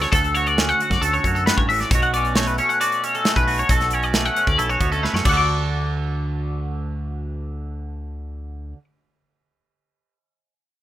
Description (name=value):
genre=math rock and midwest emo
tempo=134 BPM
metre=4/4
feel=straight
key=D major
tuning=A4 = 437 Hz
part: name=twangy electric guitar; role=accompaniment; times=0.0-8.8 s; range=D2 to A4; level=-25 LUFS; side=right 6 dB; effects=phaser
part: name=twangy electric guitar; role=arpeggios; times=0.0-8.8 s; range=A4 to D6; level=-21 LUFS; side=left 4 dB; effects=analog chorus
part: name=growling fingered electric bass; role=bass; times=0.0-8.7 s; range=A1 to F#2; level=-25 LUFS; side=equal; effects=overdrive
part: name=modern studio drum kit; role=drums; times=0.0-5.4 s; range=crash cymbal, hi-hat, kick drum, snare drum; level=-22 LUFS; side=equal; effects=none
room=studio ambience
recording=rough home demo mix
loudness=-18 LUFS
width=side -13 dB against mid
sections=0.0-5.5 A section; 5.5-9.0 B section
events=drum fill 5.0-5.5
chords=0.0 Dmaj7; 1.9 Bm9; 5.3 D